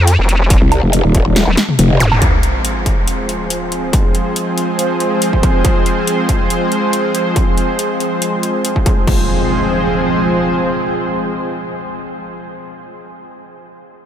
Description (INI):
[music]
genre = heavy wobble dubstep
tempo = 140 BPM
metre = 4/4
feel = half-time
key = F minor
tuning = A4 = 440 Hz
[part]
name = vowel-sweep wobble bass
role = bass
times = 0.0-2.2 s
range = Eb1 to F2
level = -12 LUFS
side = equal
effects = chorus, overdrive
[part]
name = big-room dance drum kit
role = drums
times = 0.1-9.2 s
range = crash cymbal, hi-hat, snare drum, toms, woodblock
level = -18 LUFS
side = left 1 dB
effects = none
[part]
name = electronic kick drum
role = drums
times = 0.5-9.2 s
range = none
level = -14 LUFS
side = equal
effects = distortion
[part]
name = growl bass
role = bass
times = 0.6-2.0 s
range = Eb1 to C2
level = -12 LUFS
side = equal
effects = chorus, overdrive
[part]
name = zap, sub drop and impact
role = sound effects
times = 2.0-3.9, 9.1-12.8 s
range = none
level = -22 LUFS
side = equal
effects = none
[part]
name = lush unison pad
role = sustained chords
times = 2.2-12.7 s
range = F3 to C5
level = -16 LUFS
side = right 1 dB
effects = chorus, sidechain pumping
[sound]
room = moderate huge ambient reverb, RT60 9.5 s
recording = dreamy mix soaked in reverb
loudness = -12 LUFS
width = side -10 dB against mid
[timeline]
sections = 0.0-2.2 A section; 2.2-9.1 B section; 9.1-12.5 C section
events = drop 0.0-2.2; kick drops out 1.4-2.2; drum fill 1.4-2.2; impact 2.2-3.9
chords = 0.0 N.C.; 2.2 Fm